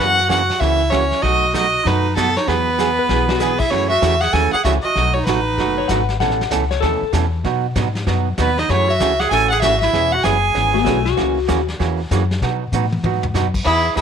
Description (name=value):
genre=country, western swing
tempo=193 BPM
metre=4/4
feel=swing 63% on 8ths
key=unclear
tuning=A4 = 440 Hz
part: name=clear fiddle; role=melody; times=0.0-6.0, 8.4-11.1, 13.6-14.0 s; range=E4 to G#5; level=-18 LUFS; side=left 1 dB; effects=none
part: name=bright clarinet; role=second line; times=0.0-6.0, 8.4-11.1, 13.7-14.0 s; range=B3 to A4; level=-22 LUFS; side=right 10 dB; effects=none
part: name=archtop guitar, miked and amplified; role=accompaniment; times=0.0-14.0 s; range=B2 to A4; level=-22 LUFS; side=right 12 dB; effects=none
part: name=upright bass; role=bass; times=0.0-14.0 s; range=E1 to B2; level=-21 LUFS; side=left 2 dB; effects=none
part: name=vintage brush drum kit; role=drums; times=0.3-14.0 s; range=brushed snare drum, crash cymbal, hi-hat, kick drum, snare drum, toms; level=-26 LUFS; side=left 2 dB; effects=none
part: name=clean lap steel guitar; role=second line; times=3.0-3.6, 5.8-7.1, 10.7-11.7 s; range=A3 to F#5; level=-21 LUFS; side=left 14 dB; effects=none
room=light reverb, small room ambience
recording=1960s-style stereo with parts hard left and right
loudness=-15 LUFS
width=side -7 dB against mid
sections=0.0-3.7 A section; 3.7-13.7 B section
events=drum fill 2.8-3.4, 12.7-13.3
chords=0.0 F#7; 1.2 B7; 2.5 Eadd9; 3.7 F#m7; 5.0 B7; 6.2 Aadd9; 7.4 B; 8.7 F#m7; 9.9 C#m7/E; 11.2 F#7; 12.4 B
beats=0.30 0.61 0.92 | 1.23 1.54 1.85 2.16 | 2.48 2.79 3.10 3.41 | 3.72 4.03 4.34 4.65 | 4.96 5.27 5.58 5.89 | 6.20 6.51 6.82 7.13 | 7.45 7.76 8.07 8.38 | 8.69 9.00 9.31 9.62 | 9.93 10.24 10.55 10.86 | 11.17 11.48 11.79 12.11 | 12.41 12.72 13.04 13.35 | 13.66 13.97